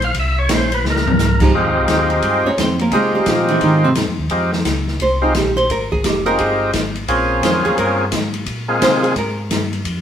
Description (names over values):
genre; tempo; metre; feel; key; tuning
soul jazz organ trio; 173 BPM; 4/4; swing 64% on 8ths; F minor; A4 = 440 Hz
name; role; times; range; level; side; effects
percussive tonewheel organ; melody; 0.0-9.1 s; Ab3 to F5; -18 LUFS; equal; slow rotary speaker, overdrive
mellow tonewheel organ; bass; 0.0-10.0 s; F1 to C3; -22 LUFS; equal; slow rotary speaker
open jazz drum kit; drums; 0.0-10.0 s; crash cymbal, hi-hat, kick drum, ride cymbal, snare drum, toms; -21 LUFS; left 1 dB; none
archtop guitar, miked and amplified; accompaniment; 0.5-9.4 s; C3 to Db5; -18 LUFS; right 2 dB; none
room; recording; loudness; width
wet stone room reverb, RT60 1.1 s; band playing live in one room; -14 LUFS; side -9 dB against mid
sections
0.0-1.5 A section; 1.5-10.0 A section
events
tonewheel organ solo 0.0-1.5; drum fill 0.8-1.2; hollow-body jazz guitar solo 1.5-10.0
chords
0.2 C7b9; 1.5 Fm9; 7.1 Bbm9